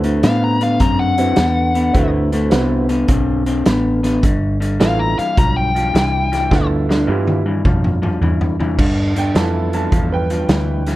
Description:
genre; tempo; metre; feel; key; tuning
electric blues shuffle; 105 BPM; 4/4; swing 66% on 8ths; G mixolydian; A4 = 441 Hz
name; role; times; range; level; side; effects
bright upright piano; accompaniment; 0.0-11.0 s; B3 to A5; -23 LUFS; right 5 dB; none
electric guitar through a small old amp; riff; 0.0-11.0 s; G2 to C4; -19 LUFS; left 1 dB; none
vintage muted fingered electric bass; bass; 0.0-11.0 s; G1 to A2; -20 LUFS; equal; none
vintage drum kit; drums; 0.0-11.0 s; crash cymbal, hi-hat, kick drum, snare drum, toms; -19 LUFS; equal; none
biting lead guitar; melody; 0.2-6.7 s; F5 to Bb5; -19 LUFS; left 2 dB; overdrive
room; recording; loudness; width
light reverb; none; -14 LUFS; side -16 dB against mid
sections
0.0-8.8 A section; 8.8-11.0 B section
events
drum fill 6.5-8.8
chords
0.0 D13; 4.2 G13

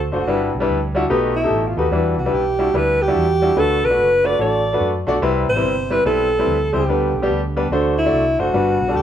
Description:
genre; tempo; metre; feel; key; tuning
uptempo gospel; 145 BPM; 4/4; swing 64% on 8ths; G major; A4 = 436 Hz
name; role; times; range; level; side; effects
warm alto saxophone; melody; 0.0-9.0 s; E4 to D5; -18 LUFS; right 1 dB; none
hollow-body short-scale fingered electric bass; bass; 0.0-9.0 s; F#1 to F#2; -24 LUFS; equal; none
clear grand piano; accompaniment; 0.1-9.0 s; G2 to D5; -19 LUFS; left 1 dB; none
room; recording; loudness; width
moderate large studio reverb, RT60 1.0 s; band playing live in one room; -16 LUFS; side -10 dB against mid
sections
0.0-9.0 A section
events
none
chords
0.3 G6; 1.1 B7b13; 1.9 Em7; 3.6 Bm7; 5.2 Cmaj7; 6.9 G; 7.7 D7

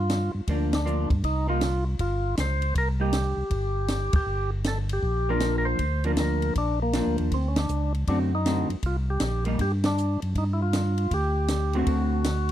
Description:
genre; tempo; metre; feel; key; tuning
soul jazz organ trio; 158 BPM; 4/4; swing 65% on 8ths; G minor; A4 = 441 Hz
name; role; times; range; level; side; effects
percussive tonewheel organ; melody; 0.0-12.5 s; Bb3 to C5; -29 LUFS; equal; slow rotary speaker
tonewheel organ; bass; 0.0-12.5 s; G1 to G2; -26 LUFS; equal; chorus vibrato, slow rotary speaker
compact cocktail drum kit; drums; 0.1-12.5 s; hi-hat, kick drum, ride cymbal, snare drum; -28 LUFS; equal; none
vintage hollow-body jazz guitar; accompaniment; 0.5-12.2 s; D3 to F#4; -29 LUFS; equal; none
room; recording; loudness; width
little or no reverb; dark, warm production; -23 LUFS; side -12 dB against mid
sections
0.0-12.5 A section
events
band accent 0.7, 4.1, 7.5, 9.8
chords
0.0 Gm7; 1.2 C5; 4.3 Gm7; 7.3 D7; 8.8 C7(no3); 10.3 G5; 11.9 D7

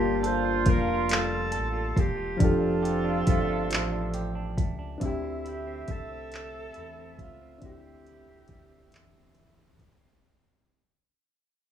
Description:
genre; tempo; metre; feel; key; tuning
slow six-eight R&B; 46 BPM (dotted quarters); 6/8; straight; unclear; A4 = 441 Hz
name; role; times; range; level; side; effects
breathy tenor saxophone; melody; 0.0-9.8 s; E4 to C5; -34 LUFS; equal; plate reverb, tape echo
semi-hollow electric guitar; second line; 0.0-10.8 s; D3 to A4; -36 LUFS; right 6 dB; spring reverb, plate reverb
overdriven reed electric piano; accompaniment; 0.0-10.2 s; F3 to A5; -31 LUFS; left 3 dB; plate reverb
warm horn section; stabs; 0.0-9.8 s; A3 to E5; -33 LUFS; right 6 dB; plate reverb
round analog bass; bass; 0.0-10.2 s; E1 to E2; -35 LUFS; equal; none
smooth R&B drum kit; drums; 0.2-10.0 s; handclaps, hi-hat, kick drum; -25 LUFS; equal; none
room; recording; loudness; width
light reverb; rough home demo mix, studio reverb; -24 LUFS; side -9 dB against mid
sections
0.0-10.2 A section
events
fade-out 0.0-10.2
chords
0.0 Gm9; 2.4 F69; 5.0 D9sus4

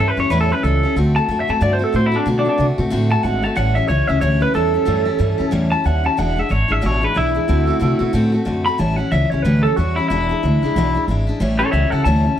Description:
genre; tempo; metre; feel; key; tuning
rockabilly; 184 BPM; 4/4; swing 60% on 8ths; A mixolydian; A4 = 438 Hz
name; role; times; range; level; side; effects
electric guitar through a small old amp; melody; 0.0-12.4 s; D4 to B5; -19 LUFS; equal; analog delay
picked steel-string acoustic guitar; accompaniment; 0.0-12.4 s; E2 to F#4; -21 LUFS; left 2 dB; none
upright bass; bass; 0.0-12.3 s; E1 to C3; -19 LUFS; equal; none
room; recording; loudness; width
light reverb; none; -15 LUFS; side -10 dB against mid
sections
0.0-11.4 A section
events
none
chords
0.0 A7; 1.0 D7; 3.6 A7; 6.2 E7; 7.5 D7; 8.8 A7; 10.1 E7; 11.4 A7

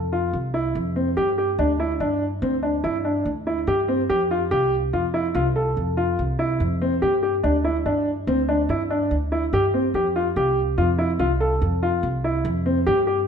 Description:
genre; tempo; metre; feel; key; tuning
contemporary instrumental, chamber music in an uneven meter; 144 BPM; 7/4; straight; unclear; A4 = 440 Hz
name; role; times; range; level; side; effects
upright bass; bass; 0.0-13.3 s; C2 to G2; -25 LUFS; right 1 dB; none
clear concert grand piano; arpeggios; 0.1-13.2 s; C4 to A4; -21 LUFS; equal; none
room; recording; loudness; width
wet recital hall reverb, RT60 1.3 s; nothing above 10.4 kHz; -20 LUFS; side -7 dB against mid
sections
0.0-13.3 A section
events
none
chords
0.0 Fmaj7(no3); 1.2 G5; 4.1 F5; 7.0 G5; 9.9 F5

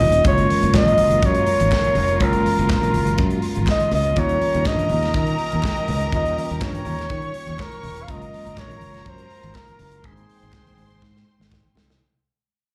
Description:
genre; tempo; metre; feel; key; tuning
disco; 123 BPM; 4/4; straight; Ab major; A4 = 442 Hz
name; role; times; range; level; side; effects
warm flugelhorn; melody; 0.0-11.5 s; Ab4 to F5; -24 LUFS; equal; slapback echo
mellow tine electric piano; accompaniment; 0.0-12.0 s; G3 to F4; -29 LUFS; equal; slapback echo
clear symphonic string section; sustained chords; 0.0-12.0 s; Eb3 to G5; -35 LUFS; equal; none
fingered electric bass; bass; 0.0-12.0 s; Eb1 to Eb3; -26 LUFS; equal; none
modern studio drum kit; drums; 0.0-12.0 s; hi-hat, kick drum, snare drum; -27 LUFS; equal; none
congas; percussion; 0.0-11.9 s; none; -31 LUFS; equal; none
group handclap; percussion; 0.7-11.6 s; none; -40 LUFS; equal; none
clear studio string section; second line; 4.2-12.0 s; Bb4 to Db6; -36 LUFS; equal; slapback echo
room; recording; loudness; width
light reverb; live gig heard through the venue's PA, club reverb; -19 LUFS; mono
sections
0.0-12.0 A section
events
fade-out 0.0-12.0; drum fill 11.0-12.0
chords
0.3 Gbmaj7; 4.2 Eb7; 8.1 Gbmaj7; 10.0 Abmaj7

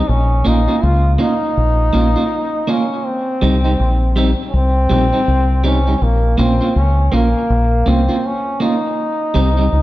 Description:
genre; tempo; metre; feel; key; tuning
roots reggae; 81 BPM; 4/4; swing 61% on 16ths; Bb dorian; A4 = 440 Hz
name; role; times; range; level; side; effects
bright trombone; melody; 0.0-9.8 s; Bb3 to F4; -19 LUFS; equal; dub echo
deep dub fingered electric bass; bass; 0.1-9.8 s; Bb1 to Db2; -15 LUFS; equal; none
electric guitar at the edge of break-up; accompaniment; 0.4-9.6 s; G3 to F4; -19 LUFS; right 2 dB; dub echo
room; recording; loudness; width
moderate recital hall reverb, RT60 1.5 s; none; -13 LUFS; side -16 dB against mid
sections
0.0-9.8 A section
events
none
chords
0.1 Bbm; 3.0 Cm; 6.0 Bbm; 9.0 Cm

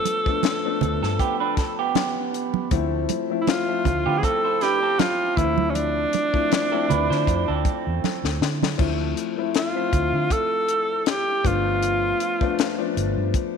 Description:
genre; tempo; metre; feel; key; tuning
lush 1970s-style soul; 79 BPM; 4/4; swing 54% on 16ths; D dorian; A4 = 441 Hz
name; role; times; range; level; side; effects
clear alto saxophone; melody; 0.0-13.0 s; C#4 to A4; -23 LUFS; right 1 dB; none
warm grand piano; accompaniment; 0.0-13.6 s; E3 to E5; -28 LUFS; left 10 dB; none
tight funk drum kit; drums; 0.1-13.5 s; crash cymbal, hi-hat, kick drum, snare drum; -25 LUFS; left 3 dB; none
congas; percussion; 0.1-8.8 s; none; -28 LUFS; right 14 dB; none
vintage muted fingered electric bass; bass; 0.8-13.3 s; G1 to D3; -26 LUFS; right 2 dB; none
electric guitar through a small old amp; riff; 1.0-8.6 s; B3 to C5; -26 LUFS; right 9 dB; wide subtle chorus
room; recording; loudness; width
moderate echo chamber reverb, RT60 2.2 s; 1960s-style stereo with parts hard left and right; -20 LUFS; side -6 dB against mid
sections
0.0-8.8 A section; 8.8-13.6 A section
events
drum fill 8.0-8.8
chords
0.0 G7; 2.7 Dm7; 11.4 G7

